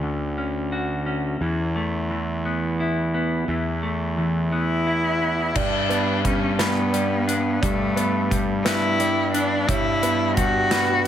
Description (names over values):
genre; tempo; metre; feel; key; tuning
post-rock; 58 BPM (dotted quarters); 6/8; straight; unclear; A4 = 439 Hz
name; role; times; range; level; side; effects
clean electric guitar; arpeggios; 0.0-11.1 s; D3 to F#4; -26 LUFS; left 1 dB; digital delay
fuzz fingered electric bass; bass; 0.0-11.1 s; D2 to G2; -25 LUFS; equal; overdrive
clear cello; melody; 4.5-11.1 s; A3 to F#4; -23 LUFS; left 1 dB; digital delay
felt-muted upright piano; arpeggios; 5.6-11.1 s; B4 to D5; -31 LUFS; right 6 dB; digital delay
big rock drum kit; drums; 5.6-11.1 s; crash cymbal, hi-hat, kick drum, snare drum; -26 LUFS; equal; none
room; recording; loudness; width
light reverb, small room reverb; none; -20 LUFS; side -10 dB against mid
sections
0.0-5.5 A section; 5.5-11.1 B section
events
none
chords
0.0 Dmaj7; 1.4 Asus2/E; 5.5 G; 9.7 Em/G